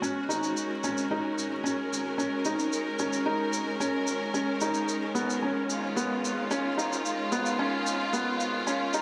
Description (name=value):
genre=piano and strings electronica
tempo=111 BPM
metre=4/4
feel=straight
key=unclear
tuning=A4 = 440 Hz
part: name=warm studio string section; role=sustained chords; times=0.0-9.0 s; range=D#3 to A#4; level=-33 LUFS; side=equal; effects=none
part: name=felt-muted upright piano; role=riff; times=0.0-9.0 s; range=B3 to D#4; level=-32 LUFS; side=equal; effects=digital delay
part: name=shaker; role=drums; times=0.0-9.0 s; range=none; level=-40 LUFS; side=equal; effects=high-pass filter on perc, high-pass filter on room
part: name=dark detuned saw bass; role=bass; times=0.3-9.0 s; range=G#1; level=-45 LUFS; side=equal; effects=none
room=wet concert hall reverb, RT60 2.3 s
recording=high-pass filter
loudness=-29 LUFS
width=mono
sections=0.0-9.0 A section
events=build-up 0.0-9.0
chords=0.0 F#/G#; 4.4 C#add9/G#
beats=| 0.03 0.57 1.11 1.65 | 2.19 2.73 3.27 3.81 | 4.36 4.89 5.44 5.98 | 6.52 7.06 7.60 8.14 | 8.68